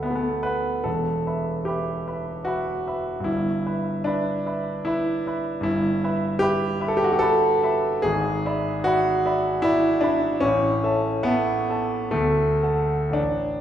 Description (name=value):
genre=classical, romantic nocturne for solo piano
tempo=56-79 BPM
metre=3/4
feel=rubato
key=unclear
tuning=A4 = 440 Hz
part: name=warm concert grand piano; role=solo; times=0.0-13.6 s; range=E1 to B5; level=-21 LUFS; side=equal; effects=none
room=wet recital hall reverb, RT60 1.4 s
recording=heard from further back in the room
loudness=-21 LUFS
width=side -10 dB against mid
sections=0.0-13.6 A section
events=none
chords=0.0 Bm/D; 0.9 Em; 3.3 Em/G; 8.0 E7/G#; 10.4 A; 12.1 D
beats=0.06 | 0.87 1.68 2.48 | 3.28 4.07 4.87 | 5.65 6.42 7.21 | 8.03 8.85 9.64 | 10.43 11.27 12.14 | 13.16